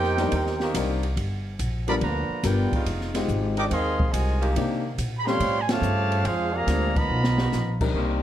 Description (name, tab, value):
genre	jazz, big band swing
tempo	142 BPM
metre	4/4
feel	swing 67% on 8ths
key	unclear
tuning	A4 = 439 Hz
part	clear trumpet section	melody	0.0-7.8 s	D4 to D6	-27 LUFS	equal	none
part	mellow trombone section	second line	0.0-7.8 s	A#2 to G4	-30 LUFS	right 4 dB	none
part	upright bass	bass	0.0-8.2 s	F1 to C3	-26 LUFS	equal	none
part	open jazz drum kit	drums	0.0-8.1 s	crash cymbal, hi-hat, kick drum, ride cymbal, snare drum	-30 LUFS	equal	none
part	warm concert grand piano	accompaniment	0.2-8.2 s	G3 to Bb4	-29 LUFS	left 5 dB	none
part	bright saxophone section	sustained chords	0.6-7.5 s	Eb3 to G4	-33 LUFS	equal	none
part	bright saxophone section	melody	8.0-8.2 s	C3 to Bb3	-28 LUFS	left 2 dB	none
room	moderate large studio reverb, RT60 1.0 s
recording	dark, warm production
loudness	-22 LUFS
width	side -11 dB against mid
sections	0.0-7.9 A section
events	band accent 5.6; drum fill 7.1-7.5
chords	0.0 Cm7; 1.2 G7#9; 2.9 Fm7; 4.6 Cm7; 5.4 A7alt; 6.2 Dm7b5; 7.1 G7alt